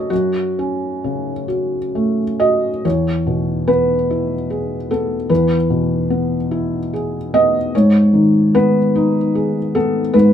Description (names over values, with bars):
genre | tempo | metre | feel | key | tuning
neoclassical minimalist piano | 43-51 BPM (dotted quarters) | 6/8 | rubato | unclear | A4 = 442 Hz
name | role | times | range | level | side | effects
felt-muted upright piano | solo | 0.0-10.3 s | E2 to D#5 | -14 LUFS | equal | none
room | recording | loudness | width
moderate studio reverb, RT60 0.6 s | minimal, uncompressed stereo recording | -15 LUFS | side -9 dB against mid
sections
0.0-2.8 A section; 2.8-10.3 B section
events
none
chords
0.0 F#m; 2.8 E; 7.7 G#m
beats
| 0.10 1.49 | 2.84 4.09 | 5.29 6.52 | 7.73 8.93 | 10.13